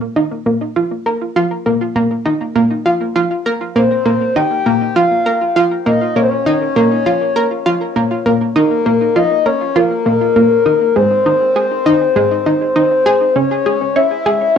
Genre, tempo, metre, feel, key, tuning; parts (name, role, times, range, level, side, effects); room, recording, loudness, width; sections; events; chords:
ambient, sequencer-driven space music; 100 BPM; 4/4; straight; Bb dorian; A4 = 438 Hz
analog pluck; riff; 0.0-14.5 s; Ab3 to C#5; -14 LUFS; right 1 dB; chorus, cassette tape, analog delay
breathy flute-like synth lead; melody; 3.8-14.6 s; Bb4 to G5; -14 LUFS; left 4 dB; chorus, cassette tape, analog delay
wet small room reverb, RT60 0.5 s; home recording on cassette; -12 LUFS; side -7 dB against mid
0.0-13.4 A section; 13.4-14.6 B section
0.0 Bb5; 11.0 Ab; 13.4 C#m